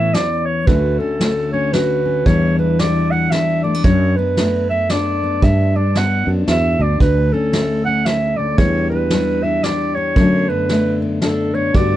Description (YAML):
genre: acoustic folk duo or small band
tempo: 114 BPM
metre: 3/4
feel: swing 60% on 8ths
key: D major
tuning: A4 = 440 Hz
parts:
  - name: warm clarinet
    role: melody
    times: 0.0-12.0 s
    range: A4 to F#5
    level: -20 LUFS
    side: right 2 dB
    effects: none
  - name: fingerpicked steel-string acoustic guitar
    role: accompaniment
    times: 0.0-12.0 s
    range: D2 to G4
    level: -19 LUFS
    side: left 3 dB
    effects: none
  - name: sustaining fretless electric bass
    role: bass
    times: 0.0-12.0 s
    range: D2 to A2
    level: -18 LUFS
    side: right 1 dB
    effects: none
  - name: vintage brush drum kit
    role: drums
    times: 0.1-11.9 s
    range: hi-hat, kick drum, ride cymbal, snare drum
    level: -19 LUFS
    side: right 1 dB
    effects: none
room: little or no reverb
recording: none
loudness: -14 LUFS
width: side -13 dB against mid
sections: 0.7-12.0 A section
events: none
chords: 0.0 Aadd9; 0.7 Dmaj7; 2.3 Em7; 3.8 Bm7/F#; 5.4 Gmaj7; 7.0 D5; 8.6 Em7; 10.2 Bm7/F#